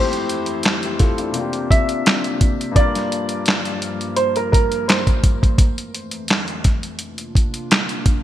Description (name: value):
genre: hip hop, boom-bap hip-hop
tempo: 85 BPM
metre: 4/4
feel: swing 54% on 16ths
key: G dorian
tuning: A4 = 439 Hz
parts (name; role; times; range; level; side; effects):
- dark upright piano; melody; 0.0-5.2 s; Bb4 to E5; -24 LUFS; right 2 dB; wide subtle chorus, high-pass filter, low-pass filter, digital delay
- dark baby grand piano; accompaniment; 0.0-5.6 s; F2 to Bb4; -25 LUFS; left 4 dB; cassette tape, high-pass filter, low-pass filter
- dark analog pad; sustained chords; 0.0-8.2 s; F2 to F4; -30 LUFS; right 1 dB; wide subtle chorus, high-pass filter, low-pass filter
- dusty soul sampler-style drum kit; drums; 0.1-8.2 s; handclaps, hi-hat, kick drum, snare drum; -17 LUFS; equal; gated reverb
room: light reverb, digital ambience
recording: bright 1980s-style digital production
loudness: -16 LUFS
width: side -12 dB against mid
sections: 0.0-8.2 A section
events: none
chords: 0.0 Fmaj7; 1.3 C9sus4; 2.8 Gm7; 5.6 Fmaj7; 7.0 C9sus4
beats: 0.64 1.35 2.05 | 2.76 3.46 4.17 4.88 | 5.58 6.29 7.00 7.70